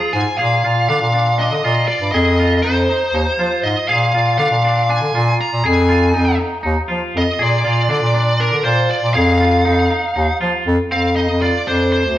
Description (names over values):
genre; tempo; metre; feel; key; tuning
progressive instrumental, band music in an uneven meter; 239 BPM (eighths); 7/8; straight; F dorian; A4 = 442 Hz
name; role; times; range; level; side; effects
bluesy overdriven lead guitar; melody; 0.0-12.2 s; Ab4 to Bb5; -18 LUFS; equal; distortion
twangy electric guitar; arpeggios; 0.0-12.0 s; C4 to Ab4; -21 LUFS; equal; spring reverb
bright bass clarinet; bass; 0.1-12.2 s; D2 to F3; -16 LUFS; equal; none
room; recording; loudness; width
wet stone room reverb, RT60 1.2 s; band playing live in one room; -14 LUFS; side -13 dB against mid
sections
0.0-10.9 A section; 10.9-12.2 B section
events
none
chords
0.4 Bb; 2.1 Fm7; 3.9 Bb7; 5.6 Fm7; 7.4 Bb; 9.2 F7(no3); 10.9 F5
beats
0.14 | 0.39 0.64 0.89 1.14 1.39 1.64 1.89 | 2.14 2.39 2.64 2.89 3.14 3.39 3.64 | 3.89 4.14 4.39 4.64 4.89 5.14 5.39 | 5.64 5.89 6.14 6.39 6.64 6.89 7.14 | 7.39 7.64 7.90 8.15 8.40 8.65 8.90 | 9.15 9.40 9.65 9.90 10.16 10.41 10.66 | 10.91 11.16 11.41 11.67 11.92 12.17